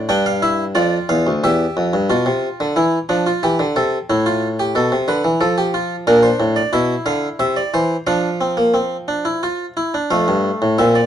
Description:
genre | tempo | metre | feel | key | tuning
classical, baroque-style 3-part fugue for harpsichord | 90 BPM | 3/4 | straight | F major | A4 = 440 Hz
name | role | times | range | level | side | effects
harpsichord | solo | 0.0-11.1 s | D2 to G5 | -15 LUFS | equal | none
room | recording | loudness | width
light reverb | worn, warbling old tape, cassette tape, warbly pitch drift | -15 LUFS | side -10 dB against mid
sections
0.0-2.1 A section; 2.1-10.1 B section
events
none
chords
0.1 G5; 1.4 Em; 2.1 Bdim; 3.4 Em; 4.1 A5; 5.4 Fadd9; 6.1 Bb; 6.7 Bdim; 7.4 C; 8.1 F5; 10.1 F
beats
| 0.10 0.76 1.43 | 2.10 2.76 3.43 | 4.09 4.74 5.40 | 6.06 6.72 7.39 | 8.07 8.75 9.43 | 10.11 10.78

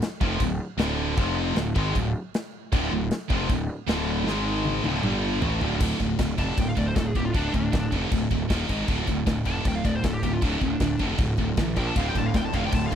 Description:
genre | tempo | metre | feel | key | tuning
heavy metal | 156 BPM | 4/4 | straight | D minor | A4 = 439 Hz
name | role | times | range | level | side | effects
big rock drum kit | drums | 0.0-13.0 s | china cymbal, crash cymbal, kick drum, snare drum, toms | -28 LUFS | equal | none
distorted electric guitar | riff | 0.2-5.8, 12.0-13.0 s | D2 to A3 | -32 LUFS | left 1 dB | overdrive
heavy high-gain guitar | riff | 0.2-13.0 s | D2 to Bb3 | -30 LUFS | left 13 dB | distortion
scooped high-gain guitar | riff | 0.2-13.0 s | D2 to Bb3 | -29 LUFS | right 11 dB | distortion
fuzz picked electric bass | bass | 0.2-13.0 s | D1 to Bb1 | -28 LUFS | equal | overdrive
high-gain lead guitar | melody | 6.4-12.9 s | D4 to A5 | -31 LUFS | left 1 dB | distortion, slapback echo
room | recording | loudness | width
little or no reverb | dry, close 1970s-style studio recording | -23 LUFS | side -9 dB against mid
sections
0.0-5.8 A section; 5.8-13.0 B section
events
drum fill 4.3-5.8; lead electric guitar solo 5.8-13.0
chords
0.0 Dm; 1.2 F5; 1.6 Dm; 4.3 G#5; 4.8 D5; 5.0 G5; 5.4 D5; 8.5 Eb5; 8.7 G#5; 8.9 D5; 11.8 Bb5; 12.0 Dm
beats
0.03 0.42 0.80 | 1.19 1.57 1.96 2.34 | 2.73 3.11 3.50 3.88 | 4.27 4.65 5.04 5.42 | 5.81 6.19 6.58 6.96 | 7.35 7.73 8.12 8.50 | 8.89 9.27 9.66 10.04 | 10.43 10.81 11.20 11.58 | 11.96 12.35 12.73

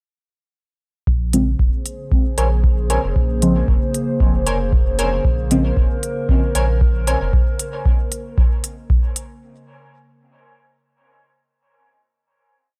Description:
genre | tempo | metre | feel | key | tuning
dub techno | 115 BPM | 4/4 | swing 55% on 16ths | Bb minor | A4 = 442 Hz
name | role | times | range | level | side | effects
warbly tape-like pad | sustained chords | 1.8-9.4 s | Db3 to C5 | -28 LUFS | equal | chorus, built-in reverb, sidechain pumping
warm sub bass | bass | 1.1-7.3 s | F1 to Bb1 | -23 LUFS | equal | sidechain pumping
electronic kick drum | drums | 1.1-9.0 s | none | -19 LUFS | equal | none
deep mellow chord stab | stabs | 1.3-5.6 s | Db3 to C4 | -24 LUFS | equal | chorus, phaser, sidechain pumping, dub echo
electronic hi-hat | drums | 1.3-9.3 s | none | -26 LUFS | equal | none
wavetable chord stab | riff | 2.4-7.2 s | Bb4 to Ab5 | -29 LUFS | equal | sidechain pumping, dub echo
room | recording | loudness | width
little or no reverb | dry, gritty hardware recording | -18 LUFS | mono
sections
1.1-9.4 groove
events
none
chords
1.1 Bbm9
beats
| 1.07 1.60 2.12 2.64 | 3.16 3.68 4.20 4.73 | 5.25 5.77 6.29 6.81 | 7.33 7.86 8.38 8.90

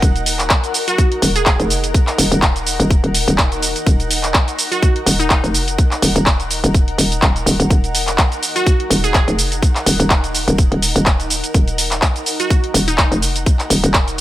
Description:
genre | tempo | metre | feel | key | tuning
bass house | 125 BPM | 4/4 | swing 55% on 16ths | Eb minor | A4 = 440 Hz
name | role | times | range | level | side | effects
hollow knocking FM bass | bass | 0.0-14.2 s | Eb1 to F1 | -18 LUFS | equal | overdrive, sidechain pumping
electronic kick drum | drums | 0.0-14.1 s | none | -14 LUFS | equal | none
house drum kit | drums | 0.0-14.2 s | handclaps, hi-hat, shaker | -18 LUFS | equal | none
granular cloud pad | texture | 0.0-14.2 s | Eb4 to Gb5 | -25 LUFS | left 1 dB | built-in reverb, sidechain pumping
glassy wavetable pluck | melody | 0.9-1.5, 4.7-5.4, 8.6-9.2, 12.4-13.1 s | Eb4 to Ab4 | -22 LUFS | right 2 dB | chorus, dub echo
room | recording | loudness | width
little or no reverb | none | -13 LUFS | side -14 dB against mid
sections
0.0-14.2 A section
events
none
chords
0.0 Ebm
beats
| 0.02 0.50 0.98 1.46 | 1.94 2.42 2.90 3.38 | 3.86 4.34 4.82 5.30 | 5.78 6.26 6.74 7.22 | 7.70 8.18 8.66 9.14 | 9.62 10.10 10.58 11.06 | 11.54 12.02 12.50 12.98 | 13.46 13.94

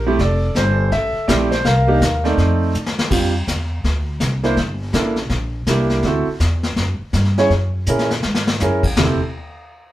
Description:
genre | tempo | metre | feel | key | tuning
jazz piano trio | 164 BPM | 4/4 | swing 63% on 8ths | F major | A4 = 440 Hz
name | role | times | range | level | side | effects
clear concert grand piano | melody | 0.0-9.2 s | G3 to F5 | -18 LUFS | right 2 dB | none
upright bass | bass | 0.0-9.2 s | F1 to Bb2 | -19 LUFS | equal | none
vintage brush drum kit | drums | 0.2-9.1 s | brushed snare drum, crash cymbal, hi-hat, kick drum, snare drum, toms | -22 LUFS | left 2 dB | none
room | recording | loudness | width
moderate studio reverb, RT60 0.6 s | band playing live in one room | -16 LUFS | side -14 dB against mid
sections
0.0-3.1 A section; 3.1-9.0 B section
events
drum fill 2.8-3.1, 7.9-8.6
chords
0.2 Fmaj9; 1.7 Cm7; 2.4 F7; 3.1 Bbadd9 (rootless); 4.6 C13; 6.0 D; 7.5 Gb9; 9.0 Fmaj9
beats
| 0.19 0.56 0.92 1.29 | 1.65 2.02 2.38 2.75 | 3.12 3.48 3.85 4.21 | 4.58 4.94 5.31 5.67 | 6.04 6.41 6.77 7.14 | 7.50 7.87 8.24 8.60 | 8.97

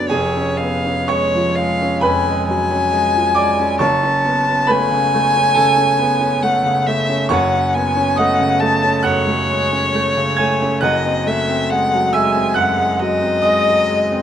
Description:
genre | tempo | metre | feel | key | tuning
classical, romantic duo for violin and grand piano | 68 BPM | 4/4 | rubato | unclear | A4 = 440 Hz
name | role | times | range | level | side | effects
rich violin | melody | 0.0-14.2 s | C#5 to A5 | -17 LUFS | left 2 dB | none
bright concert grand piano | accompaniment | 0.0-14.2 s | E#1 to G#6 | -17 LUFS | right 2 dB | none
room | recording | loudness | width
light reverb | dark, warm production | -14 LUFS | side -9 dB against mid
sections
0.0-14.2 A section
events
none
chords
0.1 C#7/E#; 3.8 F#m; 7.3 D#m7b5/F#; 10.8 G#7/F#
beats
| 0.09 1.08 2.01 2.92 | 3.81 4.68 5.56 6.43 | 7.32 8.19 9.05 9.94 | 10.82 11.71 12.57 13.44

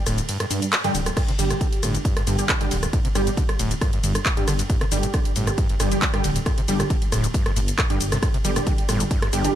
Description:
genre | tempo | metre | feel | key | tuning
driving peak-time techno | 136 BPM | 4/4 | straight | unclear | A4 = 439 Hz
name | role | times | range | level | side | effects
overdriven acid bass | riff | 0.1-9.4 s | G2 to G3 | -28 LUFS | equal | distortion, wide subtle chorus, cassette tape, sidechain pumping, digital delay
dark detuned saw bass | bass | 0.1-9.5 s | D1 to G2 | -26 LUFS | equal | sidechain pumping
techno drum kit | drums | 0.1-9.5 s | crash cymbal, handclaps, hi-hat, ride cymbal, rim click, shaker | -26 LUFS | equal | sidechain pumping on hats, sidechain pumping on cymbals, sidechain pumping on perc
rave stab | stabs | 0.8-9.6 s | D3 to G4 | -28 LUFS | right 2 dB | chorus, built-in reverb, sidechain pumping, digital delay
electronic kick drum | drums | 1.2-9.2 s | none | -23 LUFS | equal | none
room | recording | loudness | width
little or no reverb | none | -19 LUFS | side -11 dB against mid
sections
0.0-9.6 A section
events
kick drops out 0.3-1.2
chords
0.0 G5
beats
0.29 0.73 | 1.17 1.61 2.05 2.49 | 2.93 3.37 3.81 4.26 | 4.70 5.14 5.58 6.02 | 6.46 6.90 7.34 7.79 | 8.23 8.67 9.11 9.55

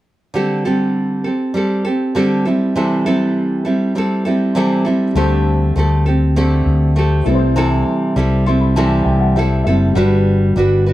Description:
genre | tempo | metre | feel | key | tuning
acoustic pop | 100 BPM | 4/4 | straight | D mixolydian | A4 = 440 Hz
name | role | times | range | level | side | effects
nylon-string guitar | accompaniment | 0.3-10.9 s | C3 to B4 | -15 LUFS | right 1 dB | none
dark upright piano | accompaniment | 5.1-10.9 s | G3 to C6 | -24 LUFS | left 7 dB | none
mellow fretless electric bass | bass | 5.2-10.9 s | F#1 to D2 | -15 LUFS | left 1 dB | none
room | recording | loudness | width
light reverb | dark, warm production | -13 LUFS | side -15 dB against mid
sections
0.4-5.2 A section; 5.2-10.9 B section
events
upright piano fill 8.2-10.0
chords
0.4 D7sus4; 2.5 C6; 5.2 D7sus4; 7.3 C6; 10.0 Gmaj7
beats
| 0.35 0.95 1.55 2.16 | 2.76 3.36 3.96 4.56 | 5.16 5.76 6.36 6.96 | 7.56 8.16 8.76 9.36 | 9.96 10.56

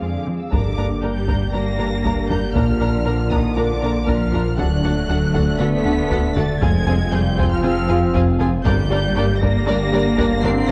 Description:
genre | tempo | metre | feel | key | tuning
cinematic, hybrid orchestral and electronic film score | 118 BPM | 4/4 | straight | G minor | A4 = 439 Hz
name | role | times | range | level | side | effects
warm symphonic violin section | melody | 0.0-10.7 s | D6 to C7 | -33 LUFS | equal | none
warm studio violin section | second line | 0.0-10.5 s | Ab4 to Bb5 | -31 LUFS | equal | none
warm symphonic viola section | accompaniment | 0.0-10.7 s | F3 to F#4 | -31 LUFS | equal | none
hollow soft pad | sustained chords | 0.0-10.7 s | F3 to F5 | -30 LUFS | equal | ensemble chorus
thumb-piano-like synth pluck | arpeggios | 0.0-10.7 s | D3 to Bb4 | -31 LUFS | equal | none
smooth gliding synth bass | riff | 0.0-10.7 s | D2 to Bb3 | -26 LUFS | equal | none
rich symphonic cello section | bass | 0.0-10.7 s | F2 to C4 | -28 LUFS | equal | none
clear trombone section | sustained chords | 0.5-10.7 s | D3 to C4 | -32 LUFS | equal | none
mellow French horn section | sustained chords | 0.5-10.7 s | C4 to Bb4 | -31 LUFS | equal | none
pure sine sub bass | bass | 0.5-10.7 s | D1 to Bb1 | -30 LUFS | equal | none
warm symphonic double bass section | bass | 0.5-10.7 s | F1 to G2 | -27 LUFS | equal | none
taiko ensemble | drums | 0.5-10.7 s | none | -27 LUFS | equal | none
room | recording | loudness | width
moderate scoring stage reverb, RT60 1.5 s | worn, warbling old tape, cassette tape, warbly pitch drift | -19 LUFS | mono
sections
0.5-10.7 A section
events
none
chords
0.0 Fm; 0.5 Gm; 2.6 Bb; 4.6 D; 6.6 Fm; 8.7 Gm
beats
0.01 | 0.52 1.03 1.54 2.04 | 2.55 3.06 3.57 4.08 | 4.59 5.09 5.60 6.11 | 6.62 7.13 7.64 8.15 | 8.65 9.16 9.67 10.18 | 10.69

